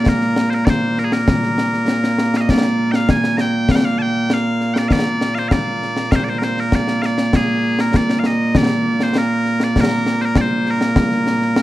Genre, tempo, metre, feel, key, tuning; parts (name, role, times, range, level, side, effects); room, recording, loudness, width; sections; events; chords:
scottish traditional, Scottish pipe music; 99 BPM; 4/4; straight; Bb mixolydian; A4 = 438 Hz
loud bright bagpipes; melody; 0.0-11.6 s; Bb2 to Bb5; -17 LUFS; right 1 dB
concert snare drum and concert bass drum; drums; 0.1-11.6 s; -18 LUFS; left 1 dB
light reverb; dark, warm production; -15 LUFS; side -15 dB against mid
0.0-11.6 A section